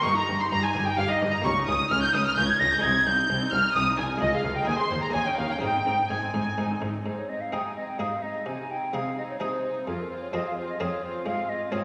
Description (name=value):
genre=classical, baroque-style concerto movement with solo episodes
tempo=129 BPM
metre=3/4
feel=straight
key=Ab major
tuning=A4 = 440 Hz
part: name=hollow concert flute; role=melody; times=0.0-11.8 s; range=Ab4 to Bb6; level=-31 LUFS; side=equal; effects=none
part: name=rich chamber violin section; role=melody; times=0.0-11.8 s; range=Ab4 to Bb6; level=-35 LUFS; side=equal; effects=none
part: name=warm chamber violin section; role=second line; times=0.0-11.8 s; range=Eb4 to Bb6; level=-33 LUFS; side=equal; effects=none
part: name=buff-stop harpsichord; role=accompaniment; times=0.0-11.8 s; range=C2 to Db5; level=-35 LUFS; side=equal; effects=none
part: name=dark chamber viola section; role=accompaniment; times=0.0-11.8 s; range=C4 to C5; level=-38 LUFS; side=equal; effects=none
part: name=rich chamber double bass section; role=bass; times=0.1-6.9 s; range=G1 to Eb2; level=-38 LUFS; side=equal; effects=none
part: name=warm chamber cello section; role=bass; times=0.1-11.8 s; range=C2 to C3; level=-38 LUFS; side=equal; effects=none
room=wet scoring stage reverb, RT60 1.6 s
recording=lossy compression artefacts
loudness=-26 LUFS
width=mono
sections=0.0-7.1 A section; 7.1-11.8 B section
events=none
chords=0.1 Eb/G; 1.4 Eb7/Db; 2.8 Ab/C; 4.2 Db; 4.7 Ab/Eb; 5.1 Eb5; 5.6 Ab; 8.5 Ab/C; 9.9 Fm; 11.3 Fm/Ab